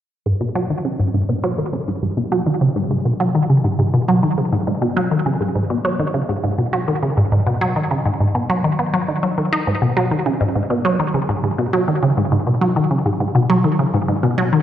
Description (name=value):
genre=ambient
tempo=102 BPM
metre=4/4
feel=straight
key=G# minor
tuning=A4 = 440 Hz
part: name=resonant blip pluck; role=riff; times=0.3-14.6 s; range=G#2 to D#4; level=-16 LUFS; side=equal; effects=phaser, analog delay
room=wet concert hall reverb, RT60 2.0 s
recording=dark, warm production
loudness=-16 LUFS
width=side -11 dB against mid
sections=0.3-9.7 A section; 9.7-14.6 B section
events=filter sweep on synth arpeggio sound 0.3-9.7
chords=none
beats=| 0.26 0.85 1.44 2.03 | 2.61 3.20 3.79 4.38 | 4.97 5.56 6.14 6.73 | 7.32 7.91 8.50 9.09 | 9.67 10.26 10.85 11.44 | 12.03 12.61 13.20 13.79 | 14.38